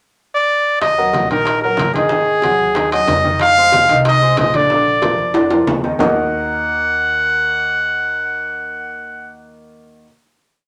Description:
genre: latin, salsa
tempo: 186 BPM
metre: 4/4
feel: straight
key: Eb harmonic minor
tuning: A4 = 440 Hz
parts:
  - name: bright trumpet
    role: melody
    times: 0.3-9.3 s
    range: Ab4 to Gb5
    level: -17 LUFS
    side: equal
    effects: none
  - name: upright bass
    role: bass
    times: 0.8-10.0 s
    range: Ab1 to F2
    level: -28 LUFS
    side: equal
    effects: none
  - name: bongos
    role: percussion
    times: 0.8-6.1 s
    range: none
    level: -27 LUFS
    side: equal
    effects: none
  - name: congas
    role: percussion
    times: 0.8-6.1 s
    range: none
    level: -29 LUFS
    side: equal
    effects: none
  - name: timbales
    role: percussion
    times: 0.8-6.1 s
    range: none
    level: -24 LUFS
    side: equal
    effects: none
  - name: warm baby grand piano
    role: accompaniment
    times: 1.0-10.0 s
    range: D3 to Eb5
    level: -23 LUFS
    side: equal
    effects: none
room: wet club reverb, RT60 0.7 s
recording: none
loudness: -15 LUFS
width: mono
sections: 0.0-0.8 pickup bar; 0.8-6.0 verse; 6.0-8.6 final chord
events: drum fill 5.3-6.0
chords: 0.0 N.C.; 0.8 Ebm; 2.1 Ab5; 3.4 Fm7; 4.7 Bb; 6.0 Ebm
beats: 0.17 0.49 | 0.82 1.14 1.47 1.79 | 2.11 2.44 2.76 3.08 | 3.41 3.73 4.05 4.38 | 4.70 5.03 5.35 5.67 | 6.00 6.32 6.64 6.97 | 7.29 7.61 7.94 8.26

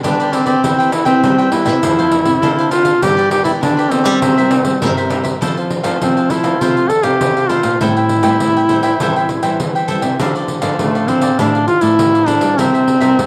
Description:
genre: samba and choro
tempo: 100 BPM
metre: 4/4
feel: straight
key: C major, F major from 5.4 s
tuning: A4 = 440 Hz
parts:
  - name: cavaquinho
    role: accompaniment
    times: 0.0-13.3 s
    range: D4 to G5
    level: -23 LUFS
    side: equal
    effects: cassette tape
  - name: nylon-string guitar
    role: accompaniment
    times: 0.0-13.3 s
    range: F2 to G4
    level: -27 LUFS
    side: equal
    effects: cassette tape
  - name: nylon-string guitar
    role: bass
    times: 0.0-13.3 s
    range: A2 to G3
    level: -23 LUFS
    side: equal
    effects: none
  - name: pandeiro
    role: percussion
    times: 0.0-13.3 s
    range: none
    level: -23 LUFS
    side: equal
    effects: none
  - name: clear duduk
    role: melody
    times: 0.1-13.3 s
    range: A3 to A4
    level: -16 LUFS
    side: equal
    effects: cassette tape
room: light reverb, small room ambience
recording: home recording on cassette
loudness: -14 LUFS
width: mono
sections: 0.0-5.4 A section; 5.4-13.3 B section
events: none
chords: 0.0 G/D; 0.6 Cmaj7/E; 1.8 Fmaj7; 3.0 G6; 4.2 C7; 5.4 Fmaj7; 7.8 Am7; 10.2 Dmadd9; 12.6 C7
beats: 0.04 | 0.64 1.24 1.83 2.43 | 3.03 3.62 4.22 4.82 | 5.42 6.01 6.61 7.21 | 7.81 8.41 9.01 9.60 | 10.20 10.80 11.39 11.99 | 12.59 13.19

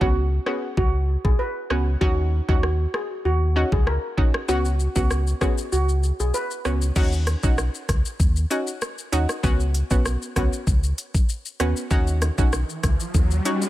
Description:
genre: dancehall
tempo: 97 BPM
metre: 4/4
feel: straight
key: Eb minor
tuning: A4 = 441 Hz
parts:
  - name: steel pan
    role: melody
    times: 0.0-6.8 s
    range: Gb4 to Cb5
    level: -28 LUFS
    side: right 1 dB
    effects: tape echo
  - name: analog pluck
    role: accompaniment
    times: 0.0-13.6 s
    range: Cb4 to Gb4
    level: -27 LUFS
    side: right 1 dB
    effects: chorus
  - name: sub bass with octave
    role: bass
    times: 0.0-13.4 s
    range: Bb1 to Eb2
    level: -22 LUFS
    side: equal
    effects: none
  - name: pop drum kit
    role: drums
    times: 0.0-13.7 s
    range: crash cymbal, hi-hat, kick drum, rim click, shaker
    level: -23 LUFS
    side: equal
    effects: none
  - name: bongos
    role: percussion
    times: 11.9-13.7 s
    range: none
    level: -36 LUFS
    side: left 3 dB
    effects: none
  - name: riser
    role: sound effects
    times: 12.6-13.7 s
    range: none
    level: -29 LUFS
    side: equal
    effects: none
room: little or no reverb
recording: none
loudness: -20 LUFS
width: side -15 dB against mid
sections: 0.0-7.0 A section; 7.0-13.7 B section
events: kick muted 5.7-7.0; riser 12.6-13.7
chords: 0.0 Db7sus4; 2.0 Ebm7; 4.5 Db7sus4; 7.0 Ebm7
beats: 0.16 0.78 1.39 | 2.01 2.63 3.25 3.87 | 4.49 5.11 5.72 6.34 | 6.96 7.58 8.20 8.82 | 9.44 10.05 10.67 11.29 | 11.91 12.53 13.15

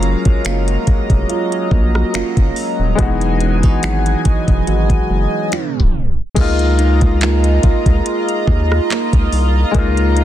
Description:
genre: contemporary R&B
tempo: 71 BPM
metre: 4/4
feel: swing 54% on 16ths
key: Db major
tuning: A4 = 440 Hz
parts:
  - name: clear grand piano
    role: accompaniment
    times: 0.0-10.2 s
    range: Ab3 to Db5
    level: -21 LUFS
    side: left 5 dB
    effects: none
  - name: chorused pulse-width pad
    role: sustained chords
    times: 0.0-10.2 s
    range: Gb3 to Bb5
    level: -22 LUFS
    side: right 1 dB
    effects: phaser
  - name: nylon-string guitar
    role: arpeggios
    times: 0.0-10.2 s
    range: Db3 to F#4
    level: -23 LUFS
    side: right 8 dB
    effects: digital delay
  - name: round analog bass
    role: bass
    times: 0.0-10.2 s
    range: Eb1 to Eb2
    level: -16 LUFS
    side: equal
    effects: none
  - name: smooth R&B drum kit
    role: drums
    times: 0.0-10.2 s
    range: crash cymbal, finger snaps, handclaps, hi-hat, kick drum, rim click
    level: -16 LUFS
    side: equal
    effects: vintage 12-bit sampler grit, soft clipping on snare
room: little or no reverb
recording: dense, heavily limited modern master, tape stop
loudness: -13 LUFS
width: side -12 dB against mid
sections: 0.0-6.4 A section; 6.4-10.2 B section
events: tape stop 5.5-6.4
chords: 0.0 Gbmaj7; 3.0 Emaj9; 6.4 Db69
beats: 0.45 1.29 2.14 | 2.98 3.83 4.67 5.52 | 6.36 7.21 8.05 8.90 | 9.74

